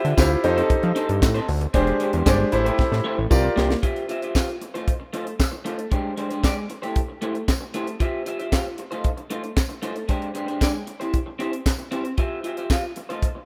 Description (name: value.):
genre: early-eighties boogie funk.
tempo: 115 BPM.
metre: 4/4.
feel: straight.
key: unclear.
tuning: A4 = 441 Hz.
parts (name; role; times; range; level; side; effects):
electric guitar through a small old amp; riff; 0.0-13.4 s; G#3 to F5; -30 LUFS; equal; lush chorus.
fat analog bass; bass; 0.0-3.8 s; E1 to F3; -25 LUFS; equal; none.
tight funk drum kit; drums; 0.0-13.3 s; handclaps, hi-hat, kick drum, snare drum; -24 LUFS; equal; none.
clear grand piano; accompaniment; 0.2-3.7 s; D4 to D5; -25 LUFS; equal; none.
tambourine; percussion; 0.2-12.8 s; none; -38 LUFS; equal; none.
room: light reverb, small room ambience.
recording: rough home demo mix.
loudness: -23 LUFS.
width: mono.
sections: 0.0-3.8 A section; 3.8-13.5 B section.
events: drum fill 2.8-3.8.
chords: 0.4 F7; 1.7 E7alt; 2.5 Am7; 3.3 C7sus4; 3.8 Cadd11/F; 4.6 F7; 5.9 G#maj7#11; 6.7 Am7; 8.0 Cadd11/F; 8.8 F7; 10.1 G#maj7#11; 10.9 C; 12.2 Cadd11/F.